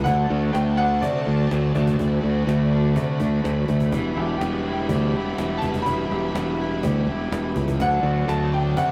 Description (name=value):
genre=indie rock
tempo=124 BPM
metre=4/4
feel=straight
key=unclear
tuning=A4 = 437 Hz
part: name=clear upright piano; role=melody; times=0.0-8.9 s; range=D5 to B5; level=-29 LUFS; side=equal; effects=none
part: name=string machine, violas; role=sustained chords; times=0.0-8.9 s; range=F#4 to B5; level=-37 LUFS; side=equal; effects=phaser, ensemble chorus
part: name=fuzz guitar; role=riff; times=0.0-8.9 s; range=D3 to F#4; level=-31 LUFS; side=equal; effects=distortion
part: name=raw garage guitar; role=riff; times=0.0-8.9 s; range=D3 to G4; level=-33 LUFS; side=equal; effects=overdrive
part: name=modern bright fingered electric bass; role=bass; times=0.0-8.9 s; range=E1 to C3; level=-25 LUFS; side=equal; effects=none
part: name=cajon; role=drums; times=0.1-8.9 s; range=none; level=-34 LUFS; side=equal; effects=none
room=moderate studio reverb, RT60 0.5 s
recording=rough rehearsal-room recording, tube saturation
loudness=-22 LUFS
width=mono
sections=0.0-8.9 A section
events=none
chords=0.1 D; 3.9 Em; 7.8 D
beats=| 0.06 0.54 1.03 1.51 | 2.00 2.48 2.96 3.45 | 3.93 4.41 4.90 5.38 | 5.86 6.35 6.83 7.32 | 7.80 8.28 8.77